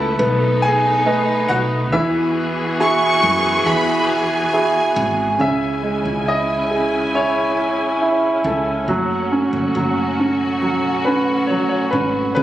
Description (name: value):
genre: pop ballad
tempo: 69 BPM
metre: 4/4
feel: straight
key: unclear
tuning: A4 = 441 Hz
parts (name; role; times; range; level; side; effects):
- clear grand piano; melody; 0.0-12.4 s; E4 to A5; -23 LUFS; left 1 dB; digital delay
- warm grand piano; accompaniment; 0.0-12.4 s; C#3 to D#5; -18 LUFS; right 2 dB; none
- warm studio string section; sustained chords; 0.0-12.4 s; C#3 to G#5; -23 LUFS; left 1 dB; none
- woody fretless electric bass; bass; 0.0-12.4 s; F#1 to F#2; -25 LUFS; equal; none
- clear studio violin section; second line; 2.8-5.4 s; G#5 to C#6; -20 LUFS; equal; none
room: moderate lush hall reverb, RT60 2.7 s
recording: recorded on a phone in the room, club reverb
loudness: -16 LUFS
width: side -13 dB against mid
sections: 0.0-5.4 A section; 5.4-12.4 B section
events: none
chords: 0.2 B7; 1.9 Eadd9; 5.4 C#m; 8.9 F#m